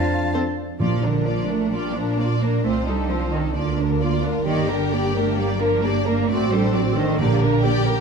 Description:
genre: quick classical-period movement for symphony orchestra.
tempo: 131 BPM.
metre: 4/4.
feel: straight.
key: Bb major.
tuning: A4 = 439 Hz.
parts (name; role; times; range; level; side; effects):
clear oboe; second line; 0.0-0.6 s; A5; -29 LUFS; left 2 dB; none.
rich studio violin section; second line; 0.0-8.0 s; Bb3 to F5; -30 LUFS; left 6 dB; none.
warm clarinet; second line; 0.0-0.6 s; C5; -32 LUFS; left 1 dB; none.
mellow French horn section; sustained chords; 0.0-0.5 s; D4; -27 LUFS; left 5 dB; none.
dark studio double bass section; bass; 0.0-8.0 s; G1 to F2; -25 LUFS; right 2 dB; none.
rich studio cello section; bass; 0.0-7.9 s; D3 to F4; -24 LUFS; right 5 dB; none.
rich studio violin section; melody; 0.3-8.0 s; A4 to D5; -28 LUFS; left 3 dB; none.
warm studio viola section; accompaniment; 0.3-8.0 s; Bb3 to Bb4; -25 LUFS; right 1 dB; none.
timpani; percussion; 0.8-1.5, 7.2-7.8 s; Bb2; -27 LUFS; right 2 dB; none.
room: wet scoring stage reverb, RT60 1.5 s.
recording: minimal, uncompressed stereo recording.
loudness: -19 LUFS.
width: side -5 dB against mid.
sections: 0.8-8.0 A section.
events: none.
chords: 0.0 F; 0.8 Bb; 2.6 F7/C; 3.6 Bb/D; 4.5 Gm; 6.3 D7/A; 7.2 Gm/Bb.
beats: 0.33 | 0.80 1.26 1.72 2.18 | 2.64 3.10 3.55 4.01 | 4.47 4.92 5.38 5.83 | 6.29 6.74 7.19 7.64.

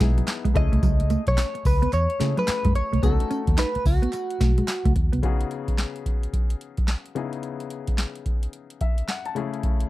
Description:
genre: R&B, new jack swing.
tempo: 109 BPM.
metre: 4/4.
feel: swing 62% on 16ths.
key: C# minor.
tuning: A4 = 440 Hz.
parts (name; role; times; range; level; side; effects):
warm grand piano; accompaniment; 0.0-9.9 s; C#3 to A5; -32 LUFS; left 8 dB; none.
mellow electric guitar; riff; 0.0-5.2 s; F#3 to D#4; -27 LUFS; right 3 dB; wide subtle chorus.
vintage muted fingered electric bass; bass; 0.0-5.2 s; B1 to C#3; -23 LUFS; equal; none.
booming analog drum machine; drums; 0.0-9.9 s; handclaps, hi-hat, kick drum, snare drum, tambourine; -23 LUFS; equal; none.
group handclap; percussion; 0.3-4.8 s; none; -40 LUFS; right 8 dB; none.
direct-recorded clean electric guitar; melody; 0.6-4.9 s; F#4 to D#5; -27 LUFS; equal; analog chorus.
room: little or no reverb.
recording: dry, close 1970s-style studio recording.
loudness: -21 LUFS.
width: side -16 dB against mid.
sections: 0.0-5.2 A section; 5.2-9.9 B section.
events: grand piano fill 8.5-9.6.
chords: 0.0 C#m7 (rootless); 0.6 F#m7 (rootless); 3.0 B7/C#; 5.2 G#m7/C#; 7.2 C#m7; 9.4 Amaj7/C#.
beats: 0.28 | 0.83 1.38 1.93 2.48 | 3.03 3.58 4.13 4.68 | 5.23 5.78 6.33 6.88 | 7.43 7.99 8.54 9.09 | 9.64.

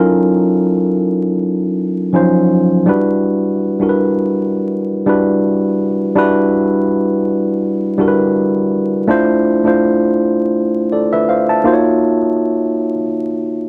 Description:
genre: R&B.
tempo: 82 BPM.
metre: 4/4.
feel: swing 55% on 16ths.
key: unclear.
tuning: A4 = 439 Hz.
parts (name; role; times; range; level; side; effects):
tine electric piano; solo; 0.0-13.7 s; E#3 to A5; -15 LUFS; equal; none.
room: wet studio reverb, RT60 0.5 s.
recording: dark, warm production, vinyl crackle.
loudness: -15 LUFS.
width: mono.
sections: 0.0-6.2 A section; 6.2-13.7 A section.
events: none.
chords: 0.0 D#m9; 2.9 Em9; 9.1 Dm9; 11.6 D#m9.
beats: | 0.30 1.03 1.77 2.50 | 3.23 3.96 4.69 5.42 | 6.16 6.89 7.62 8.35 | 9.08 9.81 10.55 11.28 | 12.01 12.74 13.47.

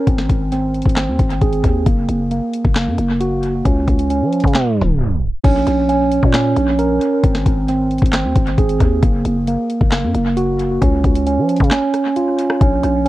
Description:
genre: hip hop, trap.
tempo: 134 BPM.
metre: 4/4.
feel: half-time.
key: unclear.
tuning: A4 = 440 Hz.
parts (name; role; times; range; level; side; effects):
mellow tine electric piano; arpeggios; 0.0-13.1 s; Bb3 to Bb4; -17 LUFS; right 2 dB; dub echo.
growling 808-style bass; bass; 0.1-13.1 s; Gb1 to F3; -19 LUFS; left 1 dB; none.
trap drum kit; drums; 0.1-13.1 s; crash cymbal, handclaps, hi-hat, kick drum, rim click, snare drum; -17 LUFS; left 1 dB; dub echo.
room: light reverb.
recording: echo-heavy mix, cassette tape, tape stop.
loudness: -14 LUFS.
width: side -16 dB against mid.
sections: 0.0-5.4 A section; 5.4-13.1 B section.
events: tape stop 4.5-5.4; drum fill 5.0-5.4; break 11.7-12.6.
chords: 0.1 Ab; 1.9 Gb; 3.7 Db; 5.4 Bbm; 7.2 Ab; 9.0 Gb; 10.8 Db.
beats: | 0.07 0.52 0.97 1.41 | 1.86 2.31 2.76 3.21 | 3.65 4.10 4.55 5.00 | 5.44 5.89 6.34 6.79 | 7.24 7.68 8.13 8.58 | 9.03 9.47 9.92 10.37 | 10.82 11.27 11.71 12.16 | 12.61 13.06.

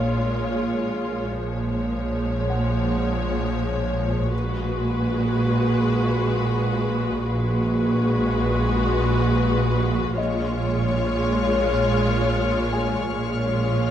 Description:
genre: cinematic, suspense film score.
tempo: 82 BPM.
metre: 4/4.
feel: straight.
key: Bb phrygian.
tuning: A4 = 440 Hz.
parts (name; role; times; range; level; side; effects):
clear studio violin section; melody; 0.0-13.9 s; Cb5 to Db5; -29 LUFS; left 3 dB; none.
rich studio viola section; accompaniment; 0.0-13.9 s; F3 to Gb4; -26 LUFS; left 1 dB; none.
clear studio cello section; bass; 0.0-13.9 s; Bb2; -26 LUFS; right 1 dB; none.
rich studio double bass section; bass; 0.0-13.9 s; Bb1; -26 LUFS; right 3 dB; none.
organ-like drone; drone; 0.0-13.9 s; Bb1; -30 LUFS; left 1 dB; ensemble chorus, built-in reverb.
sub drop; sound effects; 0.0-1.4 s; none; barely audible; none; none.
warm grand piano; texture; 0.0-13.9 s; Ab4 to Ab5; -36 LUFS; left 4 dB; none.
warm symphonic violin section; texture; 10.2-13.9 s; Db6 to F6; -34 LUFS; left 3 dB; none.
room: moderate concert hall reverb, RT60 2.0 s.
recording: dark, warm production.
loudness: -20 LUFS.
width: side -10 dB against mid.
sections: 0.0-13.9 A section.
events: impact 0.0-1.4.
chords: 0.0 Bbm7; 4.3 Abm7/Bb; 10.2 Bbm7.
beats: 0.67 | 1.40 2.13 2.86 3.59 | 4.32 5.06 5.79 6.52 | 7.25 7.98 8.71 9.45 | 10.18 10.91 11.64 12.37 | 13.11 13.84.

